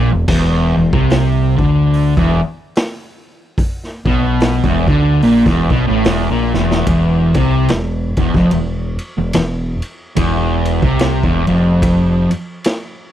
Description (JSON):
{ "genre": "stoner and doom metal", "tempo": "73 BPM", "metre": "4/4", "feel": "swing 58% on 8ths", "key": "unclear", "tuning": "A4 = 441 Hz", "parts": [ { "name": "fuzz guitar", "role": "riff", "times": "0.0-12.3 s", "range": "E2 to D3", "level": "-14 LUFS", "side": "equal", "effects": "distortion" }, { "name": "growling fingered electric bass", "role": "bass", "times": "0.0-12.3 s", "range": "E1 to D2", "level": "-18 LUFS", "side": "equal", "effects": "overdrive" }, { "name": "raw garage drum kit", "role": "drums", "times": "0.3-12.9 s", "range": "crash cymbal, hi-hat, kick drum, ride cymbal, snare drum", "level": "-18 LUFS", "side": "equal", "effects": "none" } ], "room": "small room reverb", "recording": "dry, close 1970s-style studio recording", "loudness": "-12 LUFS", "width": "side -11 dB against mid", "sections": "0.0-6.9 A section; 6.9-13.1 B section", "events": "drum fill 6.5-6.9", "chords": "0.0 E5; 6.9 N.C." }